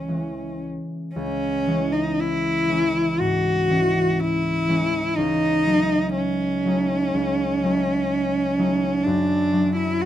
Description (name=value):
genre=classical, romantic duo for cello and harp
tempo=55-64 BPM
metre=4/4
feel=rubato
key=C# minor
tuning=A4 = 439 Hz
part: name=warm cello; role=melody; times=0.0-10.1 s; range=C#4 to F#4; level=-22 LUFS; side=equal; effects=none
part: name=concert harp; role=accompaniment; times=0.0-10.1 s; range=C#2 to D#4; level=-24 LUFS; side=equal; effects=none
room=light reverb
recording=none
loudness=-19 LUFS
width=side -11 dB against mid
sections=0.0-1.1 A section; 1.1-10.1 A section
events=none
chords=0.0 C#m; 5.2 D#m7b5/C#; 9.1 D/F#